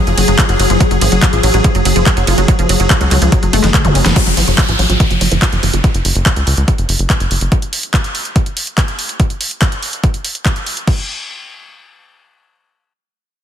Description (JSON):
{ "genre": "psychedelic trance", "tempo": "143 BPM", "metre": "4/4", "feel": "straight", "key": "F# harmonic minor", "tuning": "A4 = 439 Hz", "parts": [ { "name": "evolving wavetable pad", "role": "sustained chords", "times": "0.0-4.2 s", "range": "F#3 to G#4", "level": "-19 LUFS", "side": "left 2 dB", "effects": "ensemble chorus, built-in reverb, sidechain pumping" }, { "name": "wide unison pluck", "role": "riff", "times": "0.1-5.8 s", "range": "E#3 to F#4", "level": "-18 LUFS", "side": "moving between left 6 dB and right 6 dB", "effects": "auto-pan, sidechain pumping, dub echo" }, { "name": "tight sequencer bass", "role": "bass", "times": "0.1-7.5 s", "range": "F#1 to C#2", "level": "-14 LUFS", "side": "equal", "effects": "none" }, { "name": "big-room dance drum kit", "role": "drums", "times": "0.1-11.0 s", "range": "crash cymbal, handclaps, hi-hat, ride cymbal, snare drum, toms", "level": "-17 LUFS", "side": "equal", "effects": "overdrive" }, { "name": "electronic kick drum", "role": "drums", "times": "0.4-11.0 s", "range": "none", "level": "-13 LUFS", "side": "equal", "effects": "none" }, { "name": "zap and downlifter", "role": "sound effects", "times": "3.8-7.5 s", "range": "none", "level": "-22 LUFS", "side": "equal", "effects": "none" } ], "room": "light reverb", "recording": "dense, heavily limited modern master", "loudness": "-11 LUFS", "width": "side -9 dB against mid", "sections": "0.0-4.2 A section; 4.2-10.9 B section; 10.9-13.4 C section", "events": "drop 0.0-4.2; drum fill 3.5-4.2; band accent 4.1; filter sweep on synth arpeggio sound 4.2-5.8", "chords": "0.0 F#5; 10.9 N.C." }